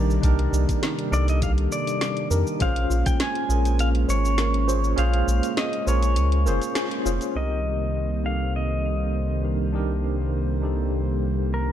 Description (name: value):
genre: sunset chillout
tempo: 101 BPM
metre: 4/4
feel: swing 53% on 16ths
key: unclear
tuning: A4 = 442 Hz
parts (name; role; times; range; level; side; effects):
- tine electric piano; accompaniment; 0.0-11.7 s; C4 to C5; -29 LUFS; moving between left 5 dB and right 4 dB; medium stereo tremolo, auto-pan, vintage 12-bit sampler grit, ping-pong delay
- airy breathy pad; sustained chords; 0.0-11.7 s; C3 to D5; -30 LUFS; right 1 dB; chorus
- soft round pluck; arpeggios; 0.0-7.3 s; D4 to Ab5; -36 LUFS; equal; chorus, ping-pong delay
- round analog bass; bass; 0.0-11.7 s; F1 to F2; -23 LUFS; equal; none
- smooth R&B drum kit; drums; 0.1-7.3 s; hi-hat, shaker, snare drum; -30 LUFS; equal; studio reverb
- electronic kick drum; drums; 0.2-3.2 s; none; -23 LUFS; equal; studio reverb
- pedal steel guitar; melody; 1.1-11.7 s; Bb4 to Ab5; -30 LUFS; equal; tape echo
room: light reverb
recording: dark, warm production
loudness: -21 LUFS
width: side -10 dB against mid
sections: 0.0-7.4 A section; 7.4-11.7 B section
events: kick drops out 5.0-7.4; band accent 6.8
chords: 0.0 Cm9; 2.6 Bbm9; 7.4 Cm9